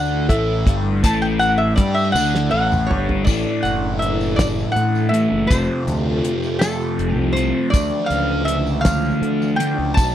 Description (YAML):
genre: psychedelic rock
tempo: 54 BPM (dotted quarters)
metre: 6/8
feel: straight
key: unclear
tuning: A4 = 440 Hz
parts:
  - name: lap resonator guitar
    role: melody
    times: 0.0-10.1 s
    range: A4 to A5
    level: -22 LUFS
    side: equal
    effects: slapback echo
  - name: string machine, violas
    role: sustained chords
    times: 0.0-10.1 s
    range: E3 to A4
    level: -32 LUFS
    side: right 4 dB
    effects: none
  - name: fuzz guitar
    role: riff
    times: 0.0-10.1 s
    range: F2 to G4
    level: -21 LUFS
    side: left 1 dB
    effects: distortion, phaser
  - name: fuzz fingered electric bass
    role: bass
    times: 0.0-10.1 s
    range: F1 to D3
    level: -23 LUFS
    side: equal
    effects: overdrive
  - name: damped 70s drum kit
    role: drums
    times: 0.3-10.1 s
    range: crash cymbal, hi-hat, kick drum, snare drum, toms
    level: -19 LUFS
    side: equal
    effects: none
  - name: tambourine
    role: percussion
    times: 1.0-10.1 s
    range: none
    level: -36 LUFS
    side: left 9 dB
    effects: none
room: small room ambience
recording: dry, close 1970s-style studio recording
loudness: -16 LUFS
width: side -11 dB against mid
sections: 0.0-3.3 A section; 3.3-10.1 B section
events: resonator guitar played with a steel bar solo 0.0-3.3; drum fill 2.2-3.3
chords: 0.0 A5; 3.3 Asus4; 5.5 Fadd9; 7.7 Dmadd9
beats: | 1.04 2.15 | 3.27 4.38 | 5.50 6.62 | 7.74 8.85 | 9.97